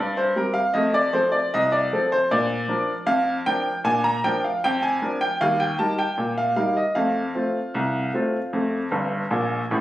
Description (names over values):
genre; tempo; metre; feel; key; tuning
ragtime piano; 77 BPM; 2/4; straight; Bb major; A4 = 443 Hz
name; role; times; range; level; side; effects
bright upright piano; solo; 0.0-9.8 s; G1 to Bb5; -20 LUFS; equal; none
room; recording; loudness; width
light reverb; recorded on a phone in the room, studio reverb; -20 LUFS; side -14 dB against mid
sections
0.0-9.8 A section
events
upright piano fill 8.9-9.8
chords
0.0 C7(no3); 0.7 F; 2.3 Bb; 5.4 Eb; 7.0 F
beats
| 0.74 1.52 | 2.29 3.07 | 3.84 4.62 | 5.40 6.18 | 6.96 7.75 | 8.53 9.32